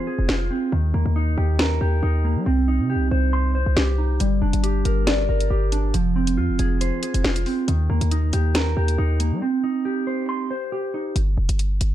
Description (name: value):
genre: hip hop, drill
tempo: 138 BPM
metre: 4/4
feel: half-time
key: unclear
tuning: A4 = 440 Hz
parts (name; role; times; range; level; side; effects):
- mellow electric guitar; accompaniment; 0.0-11.2 s; Eb3 to C6; -24 LUFS; right 1 dB; low-pass filter
- hard-hitting 808-style bass; bass; 0.2-11.9 s; F1 to G3; -20 LUFS; equal; none
- drill drum kit; drums; 0.3-11.9 s; hi-hat, snare drum; -25 LUFS; equal; none
room: little or no reverb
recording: dark, warm production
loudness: -19 LUFS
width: side -12 dB against mid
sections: 0.0-11.9 A section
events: break 0.0-4.2, 9.4-11.2; hi-hats muted 2.5-4.2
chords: 0.0 Fm; 0.7 Eb; 2.5 Cm; 4.2 Gm; 5.9 Fm; 7.7 Eb; 9.4 Cm; 11.2 Fsus2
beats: 0.29 | 0.72 1.16 1.59 2.03 | 2.46 2.90 3.33 3.77 | 4.20 4.64 5.07 5.50 | 5.94 6.38 6.81 7.24 | 7.68 8.11 8.55 8.98 | 9.42 9.85 10.29 10.72 | 11.16 11.59